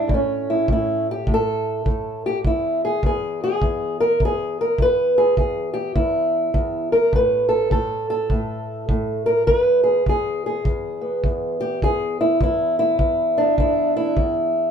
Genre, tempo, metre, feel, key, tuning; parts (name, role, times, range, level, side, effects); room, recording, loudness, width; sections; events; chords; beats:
acoustic country blues, solo or duo; 102 BPM; 4/4; swing 62% on 8ths; E mixolydian; A4 = 440 Hz
fingerpicked old ladder-braced acoustic guitar; melody; 0.0-14.7 s; E2 to B4; -19 LUFS; equal
kick drum; drums; 0.1-14.3 s; -23 LUFS; equal
moderate booth ambience, RT60 0.2 s; -18 LUFS; side -7 dB against mid
0.0-14.7 A section
0.1 N.C.; 9.5 E
| 0.09 0.68 1.27 1.85 | 2.44 3.03 3.61 4.20 | 4.79 5.37 5.96 6.54 | 7.13 7.72 8.30 8.89 | 9.47 10.06 10.65 11.23 | 11.82 12.40 12.99 13.58 | 14.16